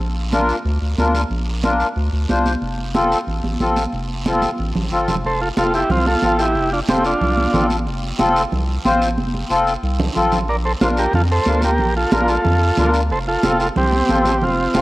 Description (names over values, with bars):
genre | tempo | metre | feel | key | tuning
latin, cumbia | 183 BPM | 4/4 | straight | F major | A4 = 439 Hz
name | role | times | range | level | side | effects
round analog bass | bass | 0.0-14.8 s | F1 to F2 | -21 LUFS | equal | none
congas | percussion | 0.0-14.8 s | none | -23 LUFS | right 2 dB | none
guiro | percussion | 0.0-14.8 s | none | -33 LUFS | right 4 dB | none
accordion | accompaniment | 0.3-14.8 s | C4 to C5 | -21 LUFS | left 2 dB | light tremolo tuning, cassette tape
overdriven combo organ | melody | 5.3-7.7, 10.5-14.8 s | C4 to D5 | -19 LUFS | right 1 dB | cassette tape
room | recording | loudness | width
light reverb, small room ambience | home recording on cassette | -16 LUFS | side -18 dB against mid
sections
0.0-5.2 A section; 5.2-14.8 B section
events
drum fill 4.3-5.2, 9.2-10.5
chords
0.0 Bb; 2.6 F; 10.5 Bb; 13.1 F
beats
| 0.00 0.33 0.66 0.98 | 1.31 1.64 1.97 2.30 | 2.63 2.95 3.28 3.61 | 3.94 4.26 4.59 4.92 | 5.25 5.57 5.90 6.23 | 6.56 6.88 7.21 7.54 | 7.87 8.19 8.52 8.85 | 9.18 9.50 9.83 10.16 | 10.48 10.81 11.14 11.47 | 11.79 12.12 12.45 12.78 | 13.10 13.43 13.76 14.09 | 14.41 14.74